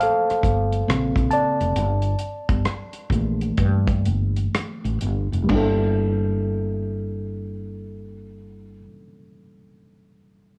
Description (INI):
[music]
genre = R&B, neo-soul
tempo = 60-70 BPM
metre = 4/4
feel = swing 63% on 16ths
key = G dorian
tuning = A4 = 439 Hz
[part]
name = reed electric piano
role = accompaniment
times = 0.0-10.6 s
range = Db3 to A5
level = -27 LUFS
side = equal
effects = low-pass filter
[part]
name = damped 70s drum kit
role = drums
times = 0.0-5.8 s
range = china cymbal, hi-hat, kick drum, rim click, toms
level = -27 LUFS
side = equal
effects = none
[part]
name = woody fretless electric bass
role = bass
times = 0.3-8.8 s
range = F1 to G2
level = -26 LUFS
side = equal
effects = lush chorus
[sound]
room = light reverb, small room ambience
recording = worn, warbling old tape, cassette tape, warbly pitch drift, studio ambience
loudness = -22 LUFS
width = mono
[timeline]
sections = 0.0-5.5 A section; 5.5-9.5 B section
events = slowing down 0.0-5.5; reed electric piano solo 0.0-5.5; filter sweep on reed electric piano 0.0-5.5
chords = 0.0 Gm9; 0.9 Bbm; 1.8 Gm69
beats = 0.01 0.87 | 1.75 2.65 3.57 4.52 | 5.50 6.49 7.49 8.48